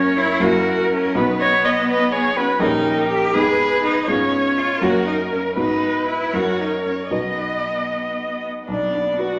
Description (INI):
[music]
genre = quick classical-period movement for piano quartet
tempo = 81 BPM (dotted quarters)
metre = 6/8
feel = rubato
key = B major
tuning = A4 = 440 Hz
[part]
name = rich violin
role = melody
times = 0.0-9.4 s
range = F#4 to D#5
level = -28 LUFS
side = equal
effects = none
[part]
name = rich cello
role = second line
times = 0.0-9.4 s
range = B3 to G#4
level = -24 LUFS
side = equal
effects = none
[part]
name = rich viola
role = accompaniment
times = 0.0-9.4 s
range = B3 to D#5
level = -24 LUFS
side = equal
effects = none
[part]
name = warm grand piano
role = accompaniment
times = 0.0-9.4 s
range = A#1 to C#5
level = -27 LUFS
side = equal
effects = none
[sound]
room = wet recital hall reverb, RT60 1.5 s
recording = none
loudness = -19 LUFS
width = mono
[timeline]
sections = 0.0-8.7 A section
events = none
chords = 0.4 F#7; 1.2 B; 2.6 D#7/A#; 3.3 G#m; 4.1 C#7/G#; 4.8 F#; 5.6 G#m7; 6.3 F#; 7.1 B; 8.7 Bm